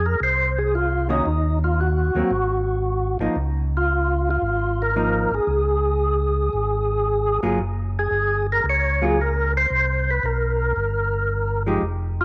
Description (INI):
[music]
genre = soul jazz organ trio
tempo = 114 BPM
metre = 4/4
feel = swing 69% on 8ths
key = unclear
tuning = A4 = 440 Hz
[part]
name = percussive tonewheel organ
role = melody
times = 0.0-12.2 s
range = Eb4 to Db5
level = -24 LUFS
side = equal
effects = slow rotary speaker, overdrive, chorus vibrato
[part]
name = mellow tonewheel organ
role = bass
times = 0.0-12.2 s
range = F1 to F2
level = -26 LUFS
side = equal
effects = chorus vibrato, slow rotary speaker
[part]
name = vintage hollow-body jazz guitar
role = accompaniment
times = 1.1-11.8 s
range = Eb3 to Ab4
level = -28 LUFS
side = equal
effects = none
[sound]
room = moderate spring reverb, RT60 2.2 s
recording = none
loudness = -22 LUFS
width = mono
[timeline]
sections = 0.0-12.2 A section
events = none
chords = 0.0 Fm7; 1.3 Ebm; 2.3 Absus2; 3.4 Db69; 5.5 Db5; 7.6 Gbadd9; 9.7 C5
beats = 0.20 0.73 | 1.26 1.79 2.31 2.84 | 3.37 3.90 4.43 4.96 | 5.48 6.01 6.54 7.07 | 7.60 8.12 8.65 9.18 | 9.71 10.24 10.77 11.29 | 11.82